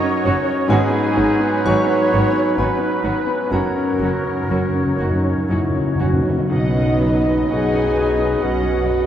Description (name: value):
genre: classical, romantic movement for piano and orchestra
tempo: 56-71 BPM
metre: 3/4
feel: rubato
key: B major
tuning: A4 = 440 Hz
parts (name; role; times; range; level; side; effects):
- bright grand piano; melody; 0.0-9.1 s; B1 to D#6; -22 LUFS; left 2 dB; none
- muted studio violin section; melody; 0.0-9.1 s; G#4 to G#5; -32 LUFS; right 2 dB; none
- dark clarinet; second line; 0.0-9.1 s; C#4 to B4; -26 LUFS; right 2 dB; none
- flute section; second line; 0.0-9.1 s; G#4 to G#5; -29 LUFS; equal; none
- warm oboe; second line; 0.0-9.1 s; B4 to D#5; -29 LUFS; left 2 dB; none
- warm bassoon; accompaniment; 0.0-9.1 s; F#3; -28 LUFS; right 4 dB; none
- dark trumpet section; stabs; 0.0-5.5 s; G#4 to C#5; -29 LUFS; right 1 dB; none
- muted studio violin section; second line; 0.2-9.1 s; B3 to F#5; -30 LUFS; right 1 dB; none
- muted studio cello section; bass; 0.2-9.1 s; F#2 to B2; -27 LUFS; equal; none
- muted studio viola section; accompaniment; 0.3-9.1 s; D#3 to D#4; -30 LUFS; left 2 dB; none
- muted studio double bass section; bass; 0.3-9.1 s; F#1 to B1; -25 LUFS; equal; none
- mellow French horn section; sustained chords; 0.7-9.1 s; B3 to G#4; -24 LUFS; equal; none
- timpani; percussion; 3.5-7.9 s; F#2 to B2; -23 LUFS; equal; none
room: wet cathedral reverb, RT60 6.4 s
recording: in a vast, echoing space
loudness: -16 LUFS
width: side -10 dB against mid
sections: 0.0-6.5 A section; 6.5-9.1 B section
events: timpani fill 3.5-6.5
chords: 0.0 F#; 0.7 G#m7; 3.5 F#; 6.5 B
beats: | 0.70 1.67 2.59 | 3.53 4.51 5.50 | 6.50 7.52 8.42